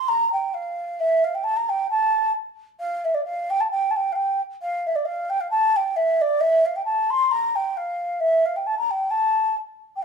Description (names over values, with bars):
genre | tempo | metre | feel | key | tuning
celtic folk | 133 BPM | 2/4 | swing 55% on 8ths | unclear | A4 = 437 Hz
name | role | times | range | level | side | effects
mellow hollow baroque flute | solo | 0.0-10.0 s | D5 to C6 | -20 LUFS | equal | none
room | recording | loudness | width
wet large studio reverb, RT60 0.9 s | band playing live in one room | -20 LUFS | side -5 dB against mid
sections
0.0-4.6 A section; 4.6-10.0 A section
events
none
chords
none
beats
| 0.08 0.53 | 0.99 1.44 | 1.90 2.35 | 2.80 3.25 | 3.71 4.16 | 4.61 5.06 | 5.51 5.96 | 6.42 6.87 | 7.32 7.77 | 8.22 8.67 | 9.12 9.57 | 10.02